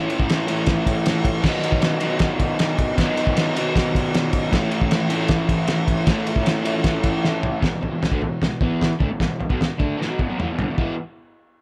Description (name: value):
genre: garage rock duo or trio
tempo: 155 BPM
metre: 4/4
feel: straight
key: unclear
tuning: A4 = 441 Hz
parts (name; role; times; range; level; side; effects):
- crunchy overdriven guitar; riff; 0.0-10.9 s; E2 to E4; -24 LUFS; equal; none
- cloth-damped thuddy drum kit; drums; 0.1-10.9 s; crash cymbal, kick drum, ride cymbal, snare drum, toms; -24 LUFS; equal; none
room: small room ambience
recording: none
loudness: -21 LUFS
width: mono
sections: 0.0-7.6 A section; 7.6-10.8 B section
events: drum fill 7.2-7.6, 10.0-10.8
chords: 0.0 A; 1.4 B; 4.5 A; 7.6 E5; 10.8 E